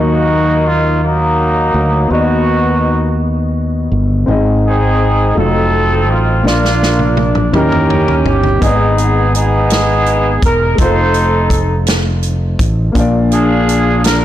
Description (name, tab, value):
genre	slow gospel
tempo	55 BPM (dotted quarters)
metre	6/8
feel	straight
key	Eb harmonic minor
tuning	A4 = 440 Hz
part	mellow horn section	melody	0.0-14.2 s	Gb3 to C5	-14 LUFS	right 1 dB	none
part	dark upright piano	accompaniment	0.0-14.2 s	Ab2 to F5	-17 LUFS	left 3 dB	none
part	mellow fretless electric bass	bass	0.0-14.2 s	Fb1 to Eb2	-14 LUFS	equal	none
part	natural country drum kit	drums	6.5-14.2 s	hi-hat, kick drum, snare drum, toms	-16 LUFS	equal	none
room	light reverb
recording	blown-out, overdriven recording, overdrive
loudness	-10 LUFS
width	side -12 dB against mid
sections	0.0-14.2 A section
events	drum fill 6.4-8.6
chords	0.0 Ebm; 2.1 B/D#; 4.3 Ab; 5.4 F7b9; 6.4 Bb; 7.5 Eb7b9; 8.6 Abm; 10.8 F7; 12.9 Bb